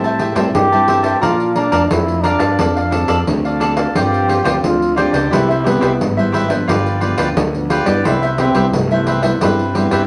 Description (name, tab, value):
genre	samba and choro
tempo	88 BPM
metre	4/4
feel	straight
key	C major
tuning	A4 = 440 Hz
part	cavaquinho	accompaniment	0.0-10.0 s	D4 to A5	-20 LUFS	equal	none
part	nylon-string guitar	accompaniment	0.0-10.1 s	F2 to A4	-24 LUFS	equal	none
part	fuzz fingered electric bass	bass	0.0-10.1 s	G1 to Bb2	-23 LUFS	equal	overdrive
part	pandeiro	percussion	0.0-10.1 s	none	-23 LUFS	equal	none
part	warm trombone	second line	0.5-9.4 s	A3 to G4	-20 LUFS	equal	none
room	wet studio reverb, RT60 0.6 s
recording	none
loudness	-15 LUFS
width	mono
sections	0.0-10.1 A section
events	trombone solo 0.0-10.1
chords	0.0 Am7; 1.2 Bbmaj7; 2.6 F6; 4.0 G7sus4; 5.3 Cmaj7; 6.7 G7; 8.1 Cmaj7